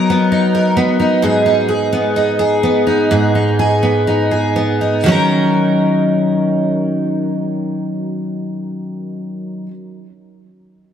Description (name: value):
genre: pop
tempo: 60-67 BPM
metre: 4/4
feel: straight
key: Eb minor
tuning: A4 = 442 Hz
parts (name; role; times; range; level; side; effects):
- picked steel-string acoustic guitar; solo; 0.0-9.7 s; Ab2 to A#4; -13 LUFS; equal; lush chorus, analog delay
room: wet plate reverb, RT60 2.3 s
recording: dreamy mix soaked in reverb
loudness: -13 LUFS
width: side -9 dB against mid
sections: 0.0-5.1 A section; 5.1-9.1 B section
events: slowing down 0.0-5.1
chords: 0.0 Bmaj7/F#; 1.2 Abm; 5.1 Ebm7